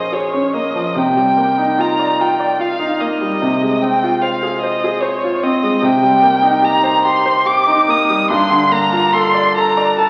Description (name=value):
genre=classical, impressionist duo for violin and grand piano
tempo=73 BPM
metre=3/4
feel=rubato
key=unclear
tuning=A4 = 440 Hz
part: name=rich violin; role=melody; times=0.0-10.1 s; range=Db5 to Eb6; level=-18 LUFS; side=equal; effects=none
part: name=bright grand piano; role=accompaniment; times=0.0-10.1 s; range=G2 to D5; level=-19 LUFS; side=equal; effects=none
room=wet recital hall reverb, RT60 1.7 s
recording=very old 78 rpm record, vinyl crackle, nothing above 10.9 kHz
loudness=-15 LUFS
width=mono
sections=0.0-10.1 A section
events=none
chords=0.0 Bbm9; 1.0 Cm11; 3.4 Fm/C; 5.8 Cm7; 8.3 Gm9